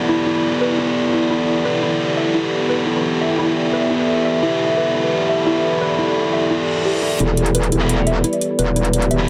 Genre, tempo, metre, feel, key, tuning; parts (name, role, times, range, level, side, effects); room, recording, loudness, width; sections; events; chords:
dark technical drum and bass; 173 BPM; 4/4; straight; E minor; A4 = 439 Hz
dark analog pad; sustained chords; 0.0-9.3 s; E4 to B5; -25 LUFS; equal; chorus, phaser
thick fuzz guitar; stabs; 0.0-9.3 s; B3 to G4; -23 LUFS; equal; distortion, delay
warbly tape-like pad; texture; 0.0-9.3 s; E4 to D5; -24 LUFS; equal; chorus, built-in reverb
warbly dusty pluck; arpeggios; 0.1-9.2 s; E4 to E5; -26 LUFS; equal; chorus, cassette tape, delay
reverse cymbal and riser; sound effects; 6.6-9.3 s; -32 LUFS; equal
metallic wobble bass; bass; 7.2-9.3 s; E1; -20 LUFS; equal; distortion, chorus, overdrive
electronic hi-hat; drums; 7.2-9.2 s; -28 LUFS; equal; low-pass filter on hats, low-pass filter on room
light reverb; dense, heavily limited modern master; -18 LUFS; mono
0.0-7.2 A section; 7.2-9.3 B section
reverse cymbal 6.6-7.2; build-up 7.2-9.3
0.0 Em